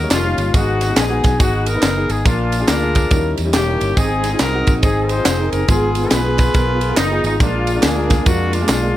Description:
uptempo gospel; 140 BPM; 4/4; swing 63% on 8ths; A4 = 441 Hz
warm horn section; melody; 0.0-9.0 s; Ab3 to C5; -20 LUFS; left 2 dB
dark grand piano; accompaniment; 0.0-9.0 s; Ab2 to Db5; -23 LUFS; left 2 dB
fingered electric bass; bass; 0.0-8.9 s; Fb1 to F2; -21 LUFS; equal
tight funk drum kit; drums; 0.1-8.8 s; kick drum, ride cymbal, snare drum; -18 LUFS; equal
handclaps and tambourine; percussion; 0.1-8.8 s; -29 LUFS; right 6 dB
mellow tonewheel organ; sustained chords; 4.0-9.0 s; Ab3 to Bb4; -25 LUFS; right 5 dB; slow rotary speaker, chorus vibrato
small room ambience; -14 LUFS; side -14 dB against mid
0.0-9.0 A section
0.0 Eb7; 0.5 Abm; 2.3 Bb; 3.1 Eb7b9; 4.0 Ab; 5.7 Fdim/Ab; 7.4 Bb7

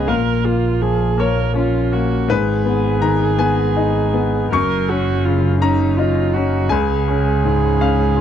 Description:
neoclassical piano and strings; 55 BPM (dotted quarters); 6/8; rubato; G# dorian; A4 = 442 Hz
bright grand piano; accompaniment; 0.0-8.2 s; C#2 to C#6; -18 LUFS; left 7 dB
muted viola; accompaniment; 0.0-8.2 s; D#4 to A#4; -21 LUFS; right 10 dB
muted double bass; bass; 0.0-8.2 s; F#1 to C#2; -20 LUFS; right 1 dB
little or no reverb; dry, close 1970s-style studio recording; -15 LUFS; side -9 dB against mid
0.0-8.2 A section
0.1 A#m; 2.3 G#m; 4.5 F#6; 6.7 C#

